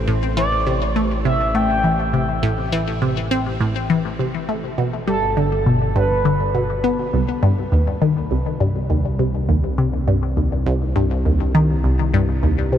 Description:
ambient, sequencer-driven space music; 102 BPM; 4/4; straight; A minor, C minor from 7.1 s; A4 = 439 Hz
analog drone; bass; 0.0-12.8 s; G1 to C2; -23 LUFS; equal; chorus
resonant blip pluck; riff; 0.1-12.8 s; C2 to C4; -19 LUFS; left 1 dB; phaser, ping-pong delay
expressive synth lead; melody; 0.4-6.8 s; A4 to G5; -24 LUFS; right 1 dB; wide subtle chorus, ping-pong delay
moderate huge ambient reverb, RT60 7.7 s; -17 LUFS; side -10 dB against mid
0.0-7.1 A section; 7.1-12.8 B section
0.0 Am; 4.8 G; 7.1 Cm
| 0.08 0.66 1.25 1.84 | 2.43 3.02 3.60 4.19 | 4.78 5.37 5.96 6.55 | 7.13 7.72 8.31 8.90 | 9.49 10.08 10.66 11.25 | 11.84 12.43

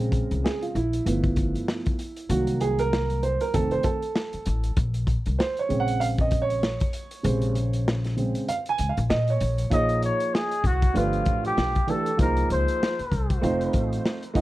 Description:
hip hop, jazz-hop; 97 BPM; 4/4; swing 58% on 16ths; Bb minor; A4 = 440 Hz
dark grand piano; accompaniment; 0.0-14.4 s; C3 to Ab5; -26 LUFS; right 3 dB
upright bass; bass; 0.0-14.0 s; F1 to Bb2; -26 LUFS; left 1 dB
crunchy breakbeat drum kit; drums; 0.1-14.4 s; hi-hat, kick drum, snare drum; -27 LUFS; left 1 dB
trumpet with bucket mute; melody; 9.7-13.4 s; F4 to Eb5; -27 LUFS; left 1 dB; tape echo
small room ambience; dry, close 1970s-style studio recording; -22 LUFS; side -16 dB against mid
0.0-9.7 A section; 9.7-14.4 B section
grand piano solo 0.0-9.7; kick muted 8.5-9.7
0.0 Bbm9; 1.1 G7; 2.3 Cm7b5; 3.5 F7; 4.8 Bbm9; 11.0 G7; 12.2 Bb9sus4/C; 13.4 F7
0.44 1.06 1.68 | 2.29 2.91 3.53 4.15 | 4.77 5.39 6.01 6.62 | 7.24 7.86 8.48 9.10 | 9.72 10.34 10.96 11.57 | 12.19 12.81 13.43 14.05

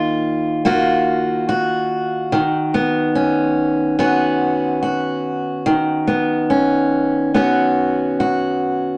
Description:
pop; 72 BPM; 4/4; straight; A4 = 440 Hz
picked steel-string acoustic guitar; solo; 0.0-9.0 s; D#3 to F#4; -18 LUFS; equal
wet studio ambience, RT60 0.5 s; -18 LUFS; mono
0.0-9.0 A section
0.0 D#madd9; 2.3 Badd9/D#
0.64 1.48 | 2.31 3.15 3.98 4.82 | 5.65 6.49 7.34 8.19

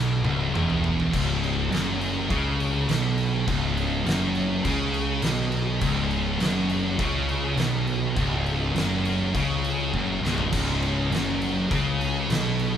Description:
stoner and doom metal; 102 BPM; 4/4; straight; C# minor; A4 = 440 Hz
heavy high-gain guitar; riff; 0.0-12.8 s; C#2 to C#3; -29 LUFS; equal; distortion
thick fuzz guitar; riff; 0.0-12.8 s; C#2 to C#3; -29 LUFS; left 6 dB; distortion
thick fuzz guitar; riff; 0.0-12.8 s; C#2 to C#3; -28 LUFS; right 5 dB; distortion
fuzz picked electric bass; bass; 0.0-12.8 s; C#1 to C#2; -29 LUFS; equal; overdrive
oversized low-tuned drum kit; drums; 0.2-12.7 s; crash cymbal, kick drum, snare drum, toms; -30 LUFS; equal
moderate large studio reverb, RT60 0.9 s; band playing live in one room; -22 LUFS; side -9 dB against mid
0.0-1.1 A section; 1.1-10.5 B section; 10.5-12.8 B section
drum fill 0.0-1.1, 9.9-10.5
0.0 C#m; 1.1 C#7sus4
0.54 | 1.12 1.71 2.30 2.88 | 3.47 4.06 4.64 5.23 | 5.82 6.40 6.99 7.58 | 8.17 8.76 9.35 9.93 | 10.52 11.11 11.70 12.29

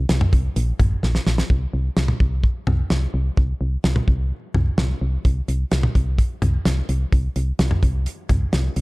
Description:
synth-pop; 128 BPM; 4/4; straight; A4 = 440 Hz
solid FM bass; bass; 0.0-8.8 s; A1 to C2; -21 LUFS; equal
damped 70s drum kit; drums; 0.1-8.8 s; hi-hat, kick drum, snare drum, toms; -20 LUFS; equal
little or no reverb; dark, warm production; -18 LUFS; side -23 dB against mid
0.0-1.5 A section; 1.5-8.8 B section
drum fill 1.0-1.5
0.09 0.56 1.03 | 1.50 1.97 2.44 2.90 | 3.37 3.84 4.31 4.78 | 5.25 5.72 6.19 6.66 | 7.12 7.59 8.06 8.53

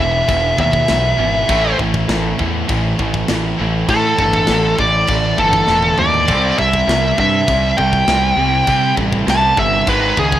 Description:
heavy metal; 100 BPM; 4/4; straight; A4 = 441 Hz
high-gain lead guitar; melody; 0.0-10.4 s; G#4 to A5; -15 LUFS; equal; distortion, ping-pong delay
heavy high-gain guitar; riff; 0.0-10.4 s; G#2 to E4; -25 LUFS; equal; distortion
high-gain distorted guitar; riff; 0.0-10.4 s; E2 to C4; -25 LUFS; left 8 dB; distortion
high-gain distorted guitar; riff; 0.0-10.4 s; E2 to C4; -21 LUFS; right 7 dB; distortion
fuzz picked electric bass; bass; 0.0-10.4 s; E1 to C3; -19 LUFS; equal; overdrive
tight metal drum kit; drums; 0.3-10.4 s; crash cymbal, kick drum, snare drum, toms; -23 LUFS; left 1 dB
small room ambience; rough home demo mix; -12 LUFS; side -12 dB against mid
0.0-10.4 A section
lead electric guitar solo 0.0-10.4; drum fill 5.7-6.3
0.0 Em; 1.5 Am; 6.3 C; 9.9 G#5
0.29 0.89 | 1.49 2.09 2.69 3.29 | 3.89 4.49 5.09 5.68 | 6.28 6.88 7.48 8.08 | 8.68 9.28 9.88

